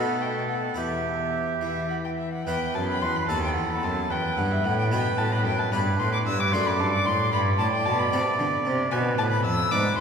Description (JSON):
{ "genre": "classical, baroque-style sonata movement with continuo", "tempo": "74 BPM (dotted quarters)", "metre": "6/8", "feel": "straight", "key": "E minor", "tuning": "A4 = 439 Hz", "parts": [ { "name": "warm violin", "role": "melody", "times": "0.0-10.0 s", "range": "E5 to E6", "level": "-28 LUFS", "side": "left 2 dB", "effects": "none" }, { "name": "clear oboe", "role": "second line", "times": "0.0-10.0 s", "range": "G4 to D5", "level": "-29 LUFS", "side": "right 4 dB", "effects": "none" }, { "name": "harpsichord", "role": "accompaniment", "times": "0.0-10.0 s", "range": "D#2 to D5", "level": "-31 LUFS", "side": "left 1 dB", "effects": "none" }, { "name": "rich cello", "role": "bass", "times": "0.0-10.0 s", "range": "D#2 to E3", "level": "-27 LUFS", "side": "equal", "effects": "none" } ], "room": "wet church reverb, RT60 3.6 s", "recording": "minimal, uncompressed stereo recording", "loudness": "-22 LUFS", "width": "side -6 dB against mid", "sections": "0.0-2.5 A section; 2.5-10.0 B section", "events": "none", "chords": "0.0 B7; 0.8 Em; 2.5 E5; 3.3 B7/D#; 4.1 Em; 5.7 G; 6.5 D/F#; 7.3 G; 8.9 E7" }